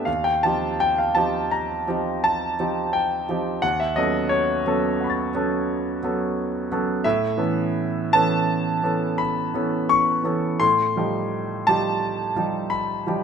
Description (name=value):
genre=classical, impressionist solo piano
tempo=85 BPM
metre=5/4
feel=rubato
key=A lydian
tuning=A4 = 440 Hz
part: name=bright concert grand piano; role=solo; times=0.0-13.2 s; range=D#2 to A6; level=-20 LUFS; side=equal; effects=none
room=moderate stone room reverb, RT60 1.3 s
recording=minimal, uncompressed stereo recording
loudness=-20 LUFS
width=side -7 dB against mid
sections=0.0-13.2 A section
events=none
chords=0.1 D#69; 3.6 B9/D#; 7.0 Aadd9; 10.6 F9/A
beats=| 0.07 0.79 1.51 2.23 2.93 | 3.63 4.32 4.99 5.68 6.37 | 7.04 7.76 8.49 9.20 9.90 | 10.61 11.32 12.02 12.71